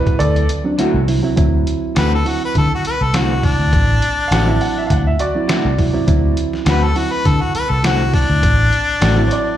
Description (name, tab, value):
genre	straight-eighth soul blues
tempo	102 BPM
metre	4/4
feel	swing 54% on 16ths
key	D mixolydian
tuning	A4 = 439 Hz
part	clear upright piano	second line	0.0-0.5, 4.3-9.6 s	F#4 to F#5	-22 LUFS	right 1 dB	slapback echo
part	reed electric piano	accompaniment	0.0-9.6 s	F#3 to E4	-21 LUFS	right 6 dB	none
part	trip hop sampler-style drum kit	drums	0.1-9.5 s	hi-hat, kick drum, snare drum	-19 LUFS	equal	none
part	vintage muted fingered electric bass	bass	0.2-9.3 s	A1 to D3	-17 LUFS	equal	none
part	electric guitar through a small old amp	stabs	0.8-9.2 s	D3 to F#4	-25 LUFS	left 4 dB	lush chorus, slapback echo
part	clear harmonica	melody	2.0-9.6 s	D4 to B4	-19 LUFS	left 2 dB	overdrive, slapback echo
room	little or no reverb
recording	live gig heard through the venue's PA, club reverb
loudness	-13 LUFS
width	side -11 dB against mid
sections	0.0-1.4 A section; 1.4-9.6 B section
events	upright piano solo 0.0-1.4; kick and snare drop out 0.2-1.4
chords	0.0 D7